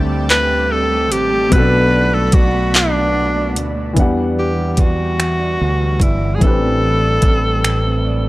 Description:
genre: slow six-eight R&B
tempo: 49 BPM (dotted quarters)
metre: 6/8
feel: straight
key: E minor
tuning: A4 = 440 Hz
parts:
  - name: electric guitar at the edge of break-up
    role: second line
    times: 0.0-8.3 s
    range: A2 to G4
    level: -24 LUFS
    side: right 4 dB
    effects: spring reverb, tape echo
  - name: warm baby grand piano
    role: accompaniment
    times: 0.0-8.3 s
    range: A2 to F#5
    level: -22 LUFS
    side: left 2 dB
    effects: none
  - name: lush unison pad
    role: sustained chords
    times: 0.0-3.9 s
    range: G3 to B5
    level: -29 LUFS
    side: equal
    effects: chorus
  - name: mellow fretless electric bass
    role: bass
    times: 0.0-8.3 s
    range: G1 to E2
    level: -19 LUFS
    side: equal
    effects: none
  - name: breathy tenor saxophone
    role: melody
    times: 0.3-8.3 s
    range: D4 to B4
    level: -18 LUFS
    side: equal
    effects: none
  - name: smooth R&B drum kit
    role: drums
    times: 0.3-7.8 s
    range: finger snaps, handclaps, hi-hat, kick drum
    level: -14 LUFS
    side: equal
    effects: none
room: digital ambience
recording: dry, gritty hardware recording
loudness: -13 LUFS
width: side -18 dB against mid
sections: 0.0-4.0 A section; 4.0-8.3 B section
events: none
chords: 0.0 D7sus4; 1.5 Bm7; 4.0 Em9; 6.4 Am11

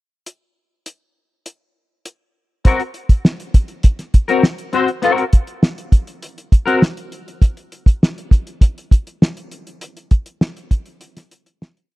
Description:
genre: funk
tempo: 101 BPM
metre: 4/4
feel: straight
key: unclear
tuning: A4 = 440 Hz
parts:
  - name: cloth-damped thuddy drum kit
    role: drums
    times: 0.3-12.0 s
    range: hi-hat, kick drum, snare drum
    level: -12 LUFS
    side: equal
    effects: none
  - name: semi-hollow electric guitar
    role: accompaniment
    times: 2.6-6.8 s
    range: C4 to C5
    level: -17 LUFS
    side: left 4 dB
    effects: ensemble chorus
room: little or no reverb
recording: dry, close 1970s-style studio recording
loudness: -15 LUFS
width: side -18 dB against mid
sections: 0.3-2.7 pickup bar; 2.7-12.0 breakdown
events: break 7.4-12.0; fade-out 9.8-12.0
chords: 0.3 N.C.; 2.7 Gb

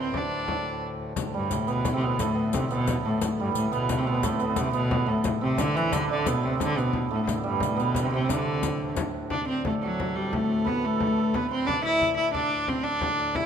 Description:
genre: medieval dance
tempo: 118 BPM (dotted quarters)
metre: 6/8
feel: straight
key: D mixolydian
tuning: A4 = 440 Hz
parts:
  - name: rich viola da gamba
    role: melody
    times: 0.0-13.5 s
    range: G2 to E4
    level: -26 LUFS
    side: left 1 dB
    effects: none
  - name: hammered dulcimer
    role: second line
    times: 0.0-13.5 s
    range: G3 to E5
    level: -30 LUFS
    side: right 7 dB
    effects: none
  - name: hand-pumped harmonium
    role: drone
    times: 0.0-13.5 s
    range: D2 to A2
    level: -36 LUFS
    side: left 2 dB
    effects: none
  - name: frame drum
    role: percussion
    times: 0.1-13.5 s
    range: none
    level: -33 LUFS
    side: left 4 dB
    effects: none
  - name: riq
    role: percussion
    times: 1.2-9.1 s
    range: none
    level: -37 LUFS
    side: left 8 dB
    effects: none
room: moderate recital hall reverb, RT60 1.4 s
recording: close, detailed microphones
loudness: -24 LUFS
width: side -8 dB against mid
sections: 0.0-1.2 A section; 1.2-9.3 A section; 9.3-13.5 B section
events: none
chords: none

